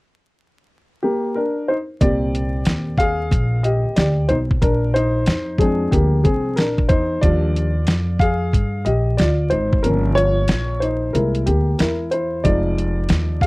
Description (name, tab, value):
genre	hip hop, jazz-hop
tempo	92 BPM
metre	4/4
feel	swing 65% on 16ths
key	C minor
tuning	A4 = 444 Hz
part	dark grand piano	accompaniment	1.0-13.5 s	Bb2 to F5	-20 LUFS	left 1 dB	none
part	upright bass	bass	2.0-13.5 s	F1 to G2	-20 LUFS	equal	none
part	boom bap sampler-style drum kit	drums	2.0-13.5 s	hi-hat, kick drum, snare drum	-19 LUFS	equal	none
room	little or no reverb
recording	dry, close 1970s-style studio recording, vinyl crackle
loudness	-16 LUFS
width	side -23 dB against mid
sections	0.0-2.0 A section; 2.0-13.5 B section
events	grand piano solo 2.0-13.5; kick muted 9.8-12.4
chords	0.0 Bb6; 2.0 Cm9; 4.6 Bb9; 7.2 Ebmaj9; 9.8 Gm7b5; 11.1 C7b13; 12.4 Fm7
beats	0.06 0.71 1.36 | 2.01 2.66 3.32 3.97 | 4.62 5.27 5.92 6.58 | 7.23 7.88 8.53 9.19 | 9.84 10.49 11.14 11.79 | 12.45 13.10